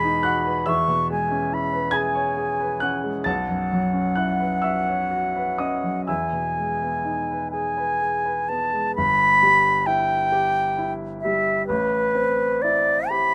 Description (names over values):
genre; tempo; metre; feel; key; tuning
classical, impressionist duo for flute and grand piano; 40-48 BPM (dotted quarters); 6/8; rubato; E major, G major from 8.9 s; A4 = 440 Hz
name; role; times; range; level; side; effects
silver concert flute; melody; 0.0-13.3 s; B4 to C#6; -23 LUFS; equal; none
clear baby grand piano; accompaniment; 0.0-13.3 s; G1 to A6; -28 LUFS; equal; none
room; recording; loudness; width
little or no reverb; close, detailed microphones; -22 LUFS; mono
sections
0.0-8.9 A section; 8.9-13.3 B section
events
none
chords
0.0 Emaj9; 0.7 C#m7/E; 3.3 B9sus4; 6.1 Emaj7; 8.9 G6; 11.7 Am9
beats
| 0.68 1.95 | 3.27 4.62 | 6.07 7.52 | 8.95 10.31 | 11.67 13.10